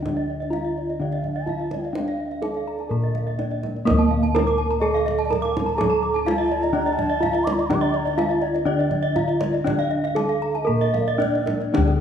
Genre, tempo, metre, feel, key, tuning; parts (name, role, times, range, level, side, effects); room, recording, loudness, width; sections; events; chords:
Balinese gamelan; 112-125 BPM; 4/4; straight; D pelog; A4 = 440 Hz
gamelan-type bronze metallophone; melody; 0.0-12.0 s; Bb3-20c to Bb4-20c; -24 LUFS; right 1 dB
gamelan-type bronze metallophone; accompaniment; 0.0-12.0 s; D3 to Bb3-20c; -31 LUFS; left 2 dB
gamelan-type bronze metallophone; arpeggios; 0.0-12.0 s; A4-30c to D6; -29 LUFS; left 6 dB
gamelan-type bossed gongs; bass; 0.0-12.0 s; D2 to Bb4-20c; -26 LUFS; left 2 dB
mellow hollow bansuri; second line; 0.1-11.6 s; D5 to D6; -31 LUFS; right 3 dB
kendang; percussion; 0.1-11.9 s; -31 LUFS; right 2 dB
gamelan-type bronze metallophone; arpeggios; 0.2-11.5 s; Eb5+20c to D6; -30 LUFS; right 5 dB
moderate recital hall reverb, RT60 1.4 s; minimal, uncompressed stereo recording; -20 LUFS; side -8 dB against mid
0.0-11.7 A section